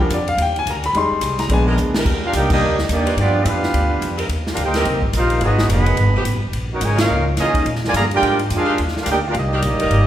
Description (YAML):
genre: jazz, big band swing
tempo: 214 BPM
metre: 4/4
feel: swing 60% on 8ths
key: Eb major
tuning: A4 = 440 Hz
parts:
  - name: clear grand piano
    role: accompaniment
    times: 0.0-1.9 s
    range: F3 to C6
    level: -19 LUFS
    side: left 2 dB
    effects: none
  - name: edgy saxophone section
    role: sustained chords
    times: 0.0-10.1 s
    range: Eb3 to Cb5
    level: -28 LUFS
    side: equal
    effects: none
  - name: upright bass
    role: bass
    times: 0.0-10.1 s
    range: Eb1 to Bb2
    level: -20 LUFS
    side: equal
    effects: none
  - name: swinging big-band drum kit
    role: drums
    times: 0.1-10.0 s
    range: crash cymbal, hi-hat, kick drum, ride cymbal, snare drum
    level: -24 LUFS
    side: equal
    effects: none
  - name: bright trombone section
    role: second line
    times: 2.2-10.1 s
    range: Db3 to G4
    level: -23 LUFS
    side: right 2 dB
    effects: none
  - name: warm trumpet section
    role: melody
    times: 2.3-10.1 s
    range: Bb3 to Cb6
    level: -20 LUFS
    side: right 1 dB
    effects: none
room: wet recital hall reverb, RT60 1.5 s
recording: recorded in a church or concert hall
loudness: -16 LUFS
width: side -11 dB against mid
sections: 0.0-2.1 A section; 2.1-10.1 B section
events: grand piano solo 0.0-2.1; drum fill 1.8; band accent 2.5, 7.0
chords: 0.0 Ebmaj7; 0.9 Fm7; 1.5 Bb7b9; 2.1 Ebmaj7; 3.2 G7; 4.3 Cm7; 5.4 Abm7; 6.0 G13; 6.5 Gb69; 7.7 Bb7; 8.8 Ebmaj7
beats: 0.10 0.38 0.66 | 0.94 1.22 1.50 1.78 | 2.06 2.34 2.62 2.90 | 3.18 3.46 3.74 4.02 | 4.30 4.58 4.86 5.14 | 5.42 5.70 5.98 6.26 | 6.54 6.82 7.11 7.38 | 7.67 7.95 8.23 8.51 | 8.79 9.07 9.35 9.63 | 9.91